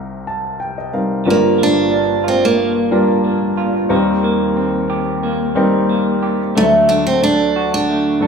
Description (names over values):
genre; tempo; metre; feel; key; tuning
acoustic folk-pop ballad; 91 BPM; 4/4; straight; G minor; A4 = 440 Hz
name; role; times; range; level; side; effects
warm upright piano; accompaniment; 0.0-8.3 s; G1 to A5; -17 LUFS; left 2 dB; none
picked steel-string acoustic guitar; melody; 1.3-8.3 s; A3 to D4; -15 LUFS; right 2 dB; none
electric guitar through a small old amp; arpeggios; 1.3-8.3 s; F3 to G4; -19 LUFS; right 2 dB; harmonic tremolo
room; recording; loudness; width
moderate large studio reverb, RT60 1.2 s; band playing live in one room; -13 LUFS; side -6 dB against mid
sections
0.0-1.3 A section; 1.3-8.3 B section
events
none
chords
0.0 Cm7; 1.3 Gm7; 3.9 Eb6; 6.6 D